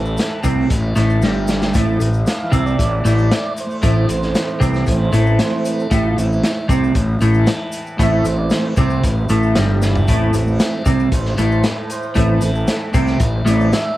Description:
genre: psychedelic rock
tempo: 115 BPM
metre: 4/4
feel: straight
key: A minor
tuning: A4 = 440 Hz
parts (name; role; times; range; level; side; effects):
- tonewheel organ; sustained chords; 0.0-14.0 s; E3 to F5; -23 LUFS; right 3 dB; slow rotary speaker
- twelve-string electric guitar; riff; 0.0-13.7 s; G2 to C3; -16 LUFS; equal; flanger
- fuzz fingered electric bass; bass; 0.0-13.7 s; G1 to C2; -22 LUFS; equal; overdrive
- tanpura; drone; 0.0-14.0 s; A2 to A3; -27 LUFS; left 1 dB; none
- tube shaker; percussion; 0.1-13.8 s; none; -38 LUFS; left 3 dB; none
- crunchy breakbeat drum kit; drums; 0.2-13.8 s; hi-hat, kick drum, snare drum, toms; -21 LUFS; equal; none
room: light reverb, studio reverb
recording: vinyl crackle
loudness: -14 LUFS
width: side -16 dB against mid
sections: 0.0-14.0 A section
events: tonewheel organ solo 0.0-14.0; drum fill 1.2-1.7, 9.8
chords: 0.0 Am

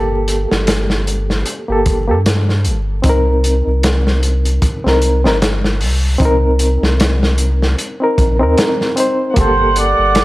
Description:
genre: trip hop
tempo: 76 BPM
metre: 4/4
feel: swing 57% on 16ths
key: unclear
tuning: A4 = 442 Hz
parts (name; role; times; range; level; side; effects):
- barky reed electric piano; accompaniment; 0.0-10.2 s; Bb3 to C5; -17 LUFS; equal; overdrive, fast tremolo, tape echo
- warm sub bass; bass; 0.0-10.2 s; G1 to G2; -15 LUFS; equal; none
- crunchy breakbeat drum kit; drums; 0.3-10.2 s; hi-hat, kick drum, snare drum; -17 LUFS; equal; none
- trumpet with cup mute; melody; 9.4-10.2 s; C5 to D5; -13 LUFS; right 3 dB; none
- rich chamber string section; sustained chords; 9.4-10.2 s; G3 to F#5; -22 LUFS; left 4 dB; none
room: light reverb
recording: vinyl crackle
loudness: -12 LUFS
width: side -18 dB against mid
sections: 0.0-10.2 A section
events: none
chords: 0.0 Gmadd9; 3.0 Cm7; 9.4 Gmadd9

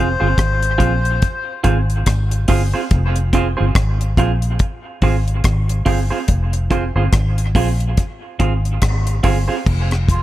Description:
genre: dub reggae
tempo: 71 BPM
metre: 4/4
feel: swing 59% on 16ths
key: F minor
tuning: A4 = 440 Hz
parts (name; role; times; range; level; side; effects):
- melodica; melody; 0.0-1.2, 10.1-10.2 s; F4 to C5; -22 LUFS; left 5 dB; dub echo
- clean electric guitar; accompaniment; 0.0-9.6 s; C4 to C5; -22 LUFS; right 4 dB; dub echo
- vintage muted fingered electric bass; bass; 0.0-10.2 s; F1 to Bb1; -17 LUFS; equal; none
- deep reggae drum kit; drums; 0.4-10.2 s; crash cymbal, hi-hat, kick drum, rim click; -18 LUFS; equal; none
room: small room reverb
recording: echo-heavy mix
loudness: -15 LUFS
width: side -14 dB against mid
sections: 0.0-9.7 A section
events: none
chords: 0.0 Fm; 9.7 N.C.

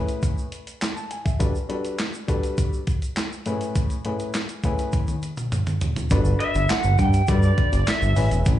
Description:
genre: early-eighties boogie funk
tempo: 102 BPM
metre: 4/4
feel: straight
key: G major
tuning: A4 = 436 Hz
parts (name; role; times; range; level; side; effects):
- dark baby grand piano; accompaniment; 0.0-8.6 s; A2 to A5; -29 LUFS; left 2 dB; slapback echo
- crisp 8-bit digital drum machine; drums; 0.1-8.6 s; handclaps, hi-hat, kick drum, snare drum, toms; -24 LUFS; equal; overdrive
- tube shaker; percussion; 0.1-8.6 s; none; -43 LUFS; right 4 dB; none
- fat analog bass; bass; 6.1-8.6 s; E1 to G2; -19 LUFS; equal; none
- lead guitar through a small cranked amp; melody; 6.4-8.3 s; D5 to G5; -25 LUFS; right 1 dB; overdrive, slapback echo
room: little or no reverb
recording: live gig heard through the venue's PA, club reverb, nothing above 10.6 kHz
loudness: -21 LUFS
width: side -13 dB against mid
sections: 0.0-6.1 A section; 6.1-8.6 B section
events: drum fill 4.9-6.1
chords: 0.0 Amaj9; 1.4 Gmaj9; 3.5 Amaj9; 6.1 Gmaj9

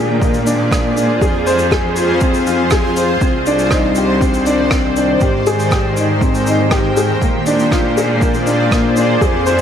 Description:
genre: piano and strings electronica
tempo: 120 BPM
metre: 4/4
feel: straight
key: unclear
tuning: A4 = 440 Hz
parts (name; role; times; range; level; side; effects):
- granular cloud pad; sustained chords; 0.0-9.6 s; Eb3 to G5; -19 LUFS; equal; built-in reverb, sidechain pumping, shimmer reverb
- dark grand piano; riff; 0.0-9.6 s; Bb3 to C5; -16 LUFS; left 1 dB; tape echo, shimmer reverb
- rich studio cello section; bass; 0.0-9.6 s; C2 to Bb2; -20 LUFS; equal; sidechain pumping
- electronic kick drum; drums; 0.2-9.3 s; none; -17 LUFS; right 1 dB; none
- shaker and rim click; drums; 0.2-9.6 s; none; -25 LUFS; right 1 dB; none
room: moderate lush hall reverb, RT60 2.0 s, studio ambience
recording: none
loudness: -12 LUFS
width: side -8 dB against mid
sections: 0.0-9.6 A section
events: none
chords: 0.0 Bb7; 1.2 Fm; 3.2 Cmadd9; 5.2 Abmaj7; 7.2 Bb7

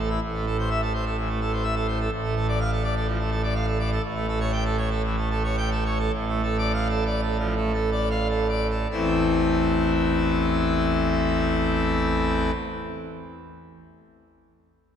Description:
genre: classical, organ toccata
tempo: 71-127 BPM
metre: 4/4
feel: straight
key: A minor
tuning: A4 = 439 Hz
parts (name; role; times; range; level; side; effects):
- pipe organ, full organ; solo; 0.0-12.5 s; A1 to G5; -22 LUFS; equal; none
room: wet church reverb, RT60 3.1 s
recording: none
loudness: -22 LUFS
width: side -8 dB against mid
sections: 0.2-8.9 A section; 8.9-15.0 B section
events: slowing down 3.1-8.9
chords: 0.2 Am; 2.1 Dm/A; 4.0 A7; 6.1 Dm/A; 8.9 Am

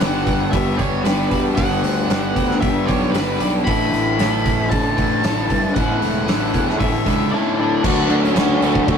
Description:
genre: rock, shoegaze and dream pop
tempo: 115 BPM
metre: 4/4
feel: straight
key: unclear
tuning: A4 = 440 Hz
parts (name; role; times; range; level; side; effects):
- octave-fuzz lead guitar; melody; 0.0-9.0 s; A3 to B5; -25 LUFS; equal; distortion
- twelve-string electric guitar; arpeggios; 0.0-9.0 s; E3 to D4; -30 LUFS; right 5 dB; none
- crunchy overdriven guitar; riff; 0.0-9.0 s; G2 to A4; -23 LUFS; right 6 dB; none
- overdriven semi-hollow guitar; riff; 0.0-9.0 s; G2 to A4; -21 LUFS; left 5 dB; none
- fuzz picked electric bass; bass; 0.0-9.0 s; E1 to G2; -23 LUFS; equal; overdrive
- loose indie drum kit; drums; 0.0-9.0 s; crash cymbal, hi-hat, kick drum, snare drum; -22 LUFS; right 1 dB; none
- tambourine; percussion; 0.0-8.8 s; none; -45 LUFS; right 8 dB; none
room: wet booth ambience, RT60 0.2 s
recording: rough rehearsal-room recording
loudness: -16 LUFS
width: side -7 dB against mid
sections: 0.0-7.8 A section; 7.8-9.0 B section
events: none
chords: 0.0 G; 3.7 Asus4; 7.8 D

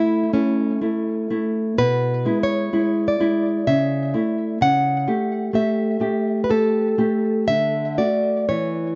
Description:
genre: romantic duo for nylon-string guitar and classical guitar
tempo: 58-65 BPM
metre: 3/4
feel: rubato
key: A major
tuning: A4 = 440 Hz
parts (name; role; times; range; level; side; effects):
- nylon-string guitar; melody; 0.0-9.0 s; C#4 to F#5; -24 LUFS; equal; tape echo
- nylon-string guitar; accompaniment; 0.0-9.0 s; B2 to G4; -23 LUFS; equal; none
room: moderate spring reverb, RT60 1.2 s, studio ambience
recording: nothing above 7.5 kHz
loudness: -21 LUFS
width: mono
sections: 0.0-9.0 A section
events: none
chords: 0.0 A; 1.8 E/B; 3.7 A/C#; 4.6 A7/C#; 7.5 D

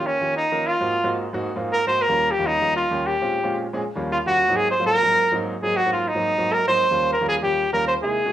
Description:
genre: jazz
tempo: 199 BPM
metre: 4/4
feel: straight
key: Eb mixolydian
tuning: A4 = 440 Hz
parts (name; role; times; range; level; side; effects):
- clear trumpet; melody; 0.0-8.3 s; Db4 to C5; -19 LUFS; equal; plate reverb
- warm grand piano; accompaniment; 0.0-8.3 s; Eb2 to Bb4; -27 LUFS; equal; plate reverb
room: moderate small room ambience, RT60 0.5 s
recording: home recording on cassette, studio ambience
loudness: -19 LUFS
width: side -11 dB against mid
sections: 0.0-8.3 A section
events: none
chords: 0.0 Eb9; 0.8 Ab9; 2.0 Eb9; 3.2 Bbm7; 3.8 Eb9; 4.4 Ab9; 6.8 Eb9

